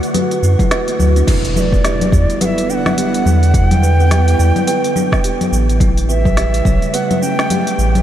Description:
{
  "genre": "organic downtempo",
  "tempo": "106 BPM",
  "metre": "4/4",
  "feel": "swing 59% on 16ths",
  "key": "E dorian",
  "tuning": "A4 = 440 Hz",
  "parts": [
    { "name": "breathy bright ney", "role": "melody", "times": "0.0-8.0 s", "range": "D5 to G5", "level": "-22 LUFS", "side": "equal", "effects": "diffuse ambient delay" },
    { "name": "warbly tape-like pad", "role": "sustained chords", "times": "0.0-8.0 s", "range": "C#3 to F#4", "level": "-21 LUFS", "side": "right 1 dB", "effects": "chorus, built-in reverb, sidechain pumping" },
    { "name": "kalimba", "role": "arpeggios", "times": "0.0-7.7 s", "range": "C#4 to D5", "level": "-21 LUFS", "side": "right 5 dB", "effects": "diffuse ambient delay" },
    { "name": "organic electronic drum kit", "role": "drums", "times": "0.0-8.0 s", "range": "congas, crash cymbal, hi-hat, shaker, snare drum", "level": "-19 LUFS", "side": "left 3 dB", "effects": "studio reverb" },
    { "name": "warm sub bass", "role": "bass", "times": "0.4-8.0 s", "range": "A1 to F#2", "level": "-13 LUFS", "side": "equal", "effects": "tube saturation, sidechain pumping" },
    { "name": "electronic kick drum", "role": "drums", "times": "0.6-6.8 s", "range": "none", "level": "-16 LUFS", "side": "equal", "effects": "studio reverb" },
    { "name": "impact", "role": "sound effects", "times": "1.3-3.5 s", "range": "none", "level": "-23 LUFS", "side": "equal", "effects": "none" }
  ],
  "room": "moderate huge ambient reverb, RT60 7.1 s",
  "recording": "dreamy mix soaked in reverb",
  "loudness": "-12 LUFS",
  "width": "side -11 dB against mid",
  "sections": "0.0-1.3 A section; 1.3-8.0 B section",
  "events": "impact 1.3-3.5",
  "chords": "0.0 D; 1.3 Em7; 5.8 A7",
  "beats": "0.14 0.71 | 1.27 1.84 2.41 2.97 | 3.54 4.11 4.67 5.24 | 5.80 6.37 6.94 7.50"
}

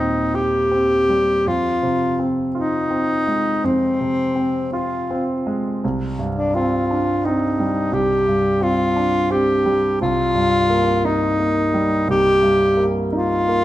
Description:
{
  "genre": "classical, impressionist duo for alto saxophone and grand piano",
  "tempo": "54-59 BPM",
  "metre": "4/4",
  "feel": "rubato",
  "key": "Eb major",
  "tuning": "A4 = 441 Hz",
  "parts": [
    { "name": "clear alto saxophone", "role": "melody", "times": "0.0-13.6 s", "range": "C4 to G4", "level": "-18 LUFS", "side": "left 1 dB", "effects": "none" },
    { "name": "clear concert grand piano", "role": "accompaniment", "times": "0.0-13.6 s", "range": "C2 to G4", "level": "-21 LUFS", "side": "right 1 dB", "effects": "none" }
  ],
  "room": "moderate recital hall reverb, RT60 1.7 s",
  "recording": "minimal, uncompressed stereo recording",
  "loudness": "-16 LUFS",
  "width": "side -14 dB against mid",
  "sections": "0.0-13.6 A section",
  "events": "none",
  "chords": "0.0 Eb6; 1.5 Fm7; 5.8 Csus2; 10.0 Eb6/C",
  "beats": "0.34 | 1.45 2.55 3.63 4.73 | 5.83 6.90 7.93 8.97 | 10.00 11.04 12.07 13.13"
}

